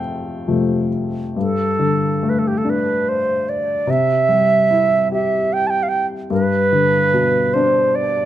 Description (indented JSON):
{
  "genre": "celtic folk, Celtic slow air",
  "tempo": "66-75 BPM",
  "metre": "3/4",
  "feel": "rubato",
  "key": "G mixolydian",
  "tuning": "A4 = 438 Hz",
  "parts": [
    { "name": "warm upright piano", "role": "accompaniment", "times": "0.0-8.3 s", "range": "F2 to G5", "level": "-20 LUFS", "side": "left 3 dB", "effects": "none" },
    { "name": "mellow wooden flute", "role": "melody", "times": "1.4-8.3 s", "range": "G4 to A5", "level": "-16 LUFS", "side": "right 3 dB", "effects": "none" }
  ],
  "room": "moderate recital hall reverb, RT60 1.3 s",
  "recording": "close, detailed microphones",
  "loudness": "-15 LUFS",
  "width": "side -12 dB against mid",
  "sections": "0.0-1.4 A section; 1.4-8.3 B section",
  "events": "upright piano solo 0.0-1.4",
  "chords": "0.0 Fadd9; 1.4 Gsus2; 3.9 C; 6.3 G",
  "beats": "0.48 | 1.36 2.21 3.06 | 3.88 4.70 5.50 | 6.31 7.13 7.96"
}